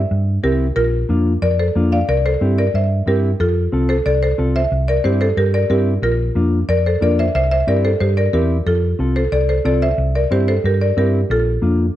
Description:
latin, cumbia; 182 BPM; 4/4; straight; F major; A4 = 440 Hz
buzzing marimba with hard mallets; melody; 0.0-11.9 s; F4 to F5; -19 LUFS; equal; slapback echo
hollow-body short-scale fingered electric bass; bass; 0.0-11.9 s; Bb1 to G2; -18 LUFS; equal
mellow electric guitar; accompaniment; 0.4-11.9 s; Bb3 to A4; -21 LUFS; left 1 dB
light reverb; dark, warm production; -14 LUFS; side -13 dB against mid
0.0-3.4 A section; 3.4-12.0 A section
0.0 C7; 0.8 Bb; 2.1 C7; 3.4 F; 4.7 C7; 6.0 Bb; 7.3 C7; 8.7 F; 10.0 C7; 11.3 Bb

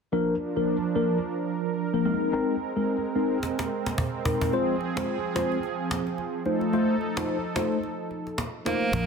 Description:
afrobeats; 109 BPM; 4/4; swing 58% on 16ths; F dorian; A4 = 440 Hz
mellow tine electric piano; accompaniment; 0.1-9.1 s; F3 to C5; -26 LUFS; left 2 dB; phaser
warm analog pad; sustained chords; 0.1-8.9 s; F3 to Bb4; -30 LUFS; right 5 dB; chorus, tremolo
cajon; drums; 3.4-9.1 s; -31 LUFS; equal
breathy tenor saxophone; melody; 8.7-9.1 s; Bb3; -26 LUFS; right 3 dB
fingered electric bass; bass; 8.9-9.1 s; Bb1; -27 LUFS; equal
congas; percussion; 8.9-9.1 s; -38 LUFS; right 12 dB
light reverb, small room ambience; dense, heavily limited modern master; -25 LUFS; side -5 dB against mid
0.1-8.9 A section
drum fill 3.4-4.5
0.1 Bb; 2.1 Abadd9; 4.5 Fm; 6.5 F7

